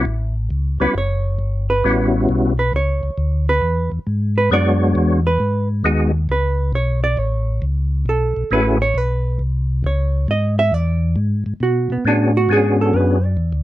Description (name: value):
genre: jazz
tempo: 135 BPM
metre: 4/4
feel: swing 67% on 8ths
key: E mixolydian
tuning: A4 = 439 Hz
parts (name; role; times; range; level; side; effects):
- percussive tonewheel organ; melody; 0.0-8.8, 12.1-13.2 s; G3 to C#5; -18 LUFS; left 2 dB; slow rotary speaker, chorus vibrato
- hollow-body jazz guitar; accompaniment; 0.0-13.6 s; B3 to E5; -20 LUFS; right 3 dB; none
- mellow tonewheel organ; bass; 0.0-13.6 s; F#1 to B2; -18 LUFS; equal; slow rotary speaker
room: light reverb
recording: dark, warm production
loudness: -16 LUFS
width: side -15 dB against mid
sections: 0.0-13.6 A section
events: hollow-body jazz guitar solo 0.0-13.6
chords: 0.1 A13; 3.6 E13; 5.4 G#m7; 6.3 Bmadd9; 7.2 F#m7; 9.0 Bsus2; 10.7 E13